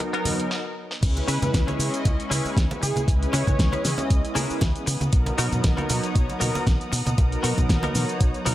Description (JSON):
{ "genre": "nu-disco, nu disco", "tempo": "117 BPM", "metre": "4/4", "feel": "swing 55% on 16ths", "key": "unclear", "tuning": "A4 = 436 Hz", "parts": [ { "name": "warm analog pad", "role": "accompaniment", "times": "0.0-8.5 s", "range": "F#3 to D#5", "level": "-29 LUFS", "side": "equal", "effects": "chorus, tape echo" }, { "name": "muted studio violin section", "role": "sustained chords", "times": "0.0-8.5 s", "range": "B3 to D#6", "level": "-35 LUFS", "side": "right 1 dB", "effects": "sidechain pumping" }, { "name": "direct-recorded clean electric guitar", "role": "riff", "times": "0.0-8.5 s", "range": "B3 to C#5", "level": "-31 LUFS", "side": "left 2 dB", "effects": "wide subtle chorus" }, { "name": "fingered electric bass with an envelope filter", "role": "bass", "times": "0.0-8.5 s", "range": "B1 to C#3", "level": "-26 LUFS", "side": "equal", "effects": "high-pass filter" }, { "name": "electronic kick drum", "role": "drums", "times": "0.0-8.3 s", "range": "none", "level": "-22 LUFS", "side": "equal", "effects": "high-pass filter on kick, small room ambience, high-pass filter on room" }, { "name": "pop drum kit", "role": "drums", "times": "0.0-8.5 s", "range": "cabasa, crash cymbal, hi-hat, snare drum", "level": "-29 LUFS", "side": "equal", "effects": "high-pass filter on hats, small room ambience, high-pass filter on snare, high-pass filter on cymbals, high-pass filter on perc" }, { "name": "congas", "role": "percussion", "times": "0.0-8.5 s", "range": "none", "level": "-32 LUFS", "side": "right 2 dB", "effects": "none" }, { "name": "wide unison lead", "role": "melody", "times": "1.3-4.1 s", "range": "G#4 to C#5", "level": "-32 LUFS", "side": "right 1 dB", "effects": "tape echo" } ], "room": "light reverb", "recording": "none", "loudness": "-21 LUFS", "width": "side -14 dB against mid", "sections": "0.0-1.0 A section; 1.0-8.5 B section", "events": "build-up 0.0-1.0; drum fill 0.5-1.0; stop 0.5-1.0; drop 1.0-8.5", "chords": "0.0 Bmaj7; 1.0 C#m7; 5.1 Bmaj7" }